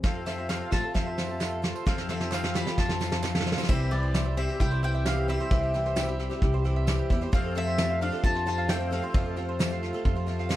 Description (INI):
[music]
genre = indie folk with a building arrangement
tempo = 132 BPM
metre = 4/4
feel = straight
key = unclear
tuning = A4 = 441 Hz
[part]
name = mandolin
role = melody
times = 0.0-10.2 s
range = D5 to B5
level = -33 LUFS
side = equal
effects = none
[part]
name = sitar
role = second line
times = 0.0-10.2 s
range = G3 to G4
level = -39 LUFS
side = left 6 dB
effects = none
[part]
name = picked twelve-string acoustic guitar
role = accompaniment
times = 0.0-10.6 s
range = F2 to A4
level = -35 LUFS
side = left 4 dB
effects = none
[part]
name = pedal harmonium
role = sustained chords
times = 0.0-10.6 s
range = C3 to A4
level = -40 LUFS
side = right 2 dB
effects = none
[part]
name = mandolin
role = arpeggios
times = 0.0-10.6 s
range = E4 to A5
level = -37 LUFS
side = right 9 dB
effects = none
[part]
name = upright bass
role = bass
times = 0.0-10.6 s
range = C2 to A2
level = -30 LUFS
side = equal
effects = none
[part]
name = soft brush drum kit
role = drums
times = 0.0-10.6 s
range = crash cymbal, kick drum, snare drum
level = -28 LUFS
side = equal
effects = none
[part]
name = tambourine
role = percussion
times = 0.3-10.6 s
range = none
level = -48 LUFS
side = right 11 dB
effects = none
[part]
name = group handclap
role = percussion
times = 0.5-3.3 s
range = none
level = -41 LUFS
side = right 16 dB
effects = none
[sound]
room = little or no reverb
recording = none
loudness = -25 LUFS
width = side -14 dB against mid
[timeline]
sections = 0.0-3.7 A section; 3.7-10.6 B section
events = build-up 0.0-3.7; drum fill 0.0-3.7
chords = 0.0 F; 3.7 C; 7.3 F